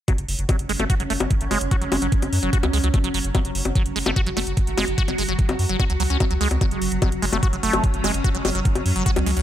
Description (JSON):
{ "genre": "psychedelic trance", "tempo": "147 BPM", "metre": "4/4", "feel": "straight", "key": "unclear", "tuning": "A4 = 440 Hz", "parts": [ { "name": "evolving wavetable pad", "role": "sustained chords", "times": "0.7-9.4 s", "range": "F#3 to F#4", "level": "-28 LUFS", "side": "right 2 dB", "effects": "ensemble chorus, built-in reverb, phaser, sidechain pumping" }, { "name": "liquid acid bass", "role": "riff", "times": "0.1-9.4 s", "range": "F#3 to F#4", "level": "-26 LUFS", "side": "right 1 dB", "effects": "phaser, auto-pan, sidechain pumping, dub echo" }, { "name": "electronic hi-hat and bongos", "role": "drums", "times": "0.1-9.4 s", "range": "none", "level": "-27 LUFS", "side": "left 3 dB", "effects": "none" }, { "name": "electronic kick drum", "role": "drums", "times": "0.1-9.1 s", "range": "none", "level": "-20 LUFS", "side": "equal", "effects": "none" }, { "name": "round analog bass", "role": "bass", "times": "0.2-9.4 s", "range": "F#1 to F#2", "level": "-25 LUFS", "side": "equal", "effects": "none" } ], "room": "digital ambience", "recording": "none", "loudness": "-19 LUFS", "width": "side -11 dB against mid", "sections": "0.1-9.4 A section", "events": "none", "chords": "0.1 F#5" }